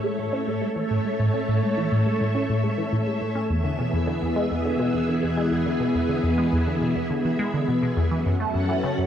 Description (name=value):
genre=ambient, sequencer-driven space music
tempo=104 BPM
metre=4/4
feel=straight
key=A major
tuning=A4 = 440 Hz
part: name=string machine, full ensemble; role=sustained chords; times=0.0-9.1 s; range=E3 to F#5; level=-24 LUFS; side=equal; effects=ensemble chorus
part: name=resonant blip pluck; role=riff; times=0.0-9.0 s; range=E2 to C#4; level=-25 LUFS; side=equal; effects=phaser, lush chorus, ping-pong delay
room=wet plate reverb, RT60 3.0 s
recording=worn, warbling old tape, cassette tape, warbly pitch drift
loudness=-21 LUFS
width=side -9 dB against mid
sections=0.0-9.1 A section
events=none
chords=0.0 A; 3.5 E; 8.1 F#m